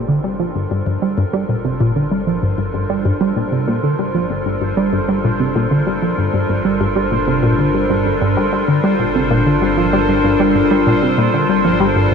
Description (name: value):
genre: ambient, sequencer-driven space music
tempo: 96 BPM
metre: 4/4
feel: straight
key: G minor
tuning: A4 = 440 Hz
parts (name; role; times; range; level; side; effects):
- evolving wavetable pad; sustained chords; 0.0-12.1 s; G3 to Bb4; -19 LUFS; left 2 dB; chorus, built-in reverb
- tight sequenced synth; riff; 0.0-12.1 s; G2 to G3; -16 LUFS; equal; chorus, ping-pong delay
- fat analog bass; bass; 0.0-12.1 s; G1; -28 LUFS; equal; none
- bubbling stepped-filter texture; texture; 0.0-12.1 s; C5; -24 LUFS; right 3 dB; chorus, built-in reverb
room: moderate huge ambient reverb, RT60 8.9 s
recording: dark, warm production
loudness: -14 LUFS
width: side -6 dB against mid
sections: 0.0-12.1 A section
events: fade-in on ambient pad 0.0-12.1; fade-in on analog synth bass 0.0-12.1; fade-in on synth texture 0.0-12.1; filter sweep on synth arpeggio sound 0.0-12.1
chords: 0.0 Gm7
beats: 0.09 0.71 | 1.34 1.96 2.59 3.21 | 3.84 4.46 5.09 5.71 | 6.34 6.96 7.59 8.21 | 8.84 9.46 10.09 10.71 | 11.34 11.96